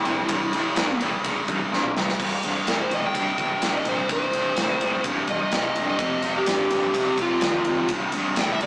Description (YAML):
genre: blues rock power trio and southern rock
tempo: 126 BPM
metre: 4/4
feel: straight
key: C mixolydian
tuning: A4 = 435 Hz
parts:
  - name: overdriven slide guitar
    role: melody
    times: 0.0-8.7 s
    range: E4 to G5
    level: -25 LUFS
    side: equal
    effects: none
  - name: overdriven electric guitar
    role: riff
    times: 0.0-8.7 s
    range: C2 to D3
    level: -25 LUFS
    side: equal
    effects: tremolo
  - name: growling picked electric bass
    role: bass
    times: 0.1-8.7 s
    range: C1 to Eb2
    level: -36 LUFS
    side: equal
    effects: overdrive
  - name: big rock drum kit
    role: drums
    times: 0.1-8.7 s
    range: crash cymbal, kick drum, ride cymbal, snare drum, toms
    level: -25 LUFS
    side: equal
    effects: none
room: moderate studio reverb, RT60 0.6 s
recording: rough rehearsal-room recording, small speaker sound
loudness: -21 LUFS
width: side -28 dB against mid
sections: 0.0-2.2 A section; 2.2-8.7 A section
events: electric slide guitar solo 0.0-8.7; drum fill 1.7-2.2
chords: 0.0 C; 6.0 F7; 7.9 C